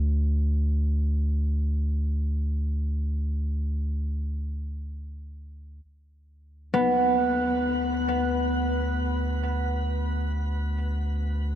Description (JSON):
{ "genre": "ambient", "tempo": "free time", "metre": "none", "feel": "none", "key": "unclear", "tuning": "A4 = 440 Hz", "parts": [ { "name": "round analog bass", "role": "bass", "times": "0.0-11.6 s", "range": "D2", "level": "-26 LUFS", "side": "equal", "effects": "none" }, { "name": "concert harp", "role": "arpeggios", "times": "6.7-10.6 s", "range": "B3", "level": "-25 LUFS", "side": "equal", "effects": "ping-pong delay" } ], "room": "moderate shimmer reverb, RT60 7.4 s", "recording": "none", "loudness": "-24 LUFS", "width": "side -10 dB against mid", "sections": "0.0-11.6 A section", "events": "none", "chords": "0.0 N.C.; 5.8 D5" }